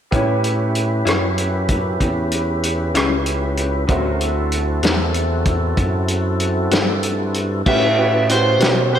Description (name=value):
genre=slow blues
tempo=64 BPM (dotted quarters)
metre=12/8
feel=straight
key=A mixolydian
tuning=A4 = 440 Hz
part: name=bright upright piano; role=accompaniment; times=0.1-9.0 s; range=C#4 to E5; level=-26 LUFS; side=right 5 dB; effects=slapback echo
part: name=electric guitar through a small old amp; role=accompaniment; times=0.1-8.8 s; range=A2 to F#4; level=-26 LUFS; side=left 6 dB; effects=tremolo, slapback echo
part: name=tonewheel organ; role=sustained chords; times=0.1-9.0 s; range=G3 to B4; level=-23 LUFS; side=equal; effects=overdrive, slow rotary speaker
part: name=smooth synth bass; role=bass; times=0.1-9.0 s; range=C#2 to B2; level=-21 LUFS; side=equal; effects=none
part: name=warm soul drum kit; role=drums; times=0.1-8.8 s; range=crash cymbal, hi-hat, kick drum, rim click, snare drum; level=-21 LUFS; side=equal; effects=none
part: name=crunchy overdriven guitar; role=melody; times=7.7-9.0 s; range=C5 to E5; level=-17 LUFS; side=right 1 dB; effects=slapback echo
room=moderate concert hall reverb, RT60 1.8 s, small room ambience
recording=big arena sound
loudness=-16 LUFS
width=side -9 dB against mid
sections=0.1-7.7 A section; 7.7-9.0 B section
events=none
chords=0.1 A7; 3.9 D7; 7.7 A13